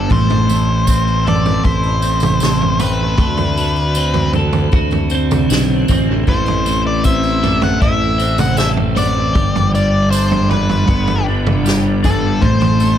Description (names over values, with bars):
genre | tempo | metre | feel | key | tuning
psychedelic rock | 78 BPM | 4/4 | straight | A dorian | A4 = 440 Hz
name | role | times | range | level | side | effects
octave-fuzz lead guitar | melody | 0.0-13.0 s | A4 to F#5 | -20 LUFS | left 3 dB | distortion, analog delay
tonewheel organ | sustained chords | 0.0-13.0 s | D3 to B5 | -29 LUFS | right 6 dB | none
twelve-string electric guitar | riff | 0.0-13.0 s | A2 to B4 | -18 LUFS | equal | phaser, double-tracked left and right, analog delay
fuzz fingered electric bass | bass | 0.0-13.0 s | G1 to D2 | -18 LUFS | equal | overdrive
vintage drum kit | drums | 0.1-12.8 s | kick drum, snare drum, toms | -18 LUFS | right 1 dB | none
tambourine | percussion | 0.1-13.0 s | none | -32 LUFS | right 11 dB | none
room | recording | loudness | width
small room ambience | echo-heavy mix | -12 LUFS | side -10 dB against mid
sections
0.0-13.0 A section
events
none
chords
0.1 Am; 3.2 D7; 6.3 Am; 9.4 G; 12.4 Am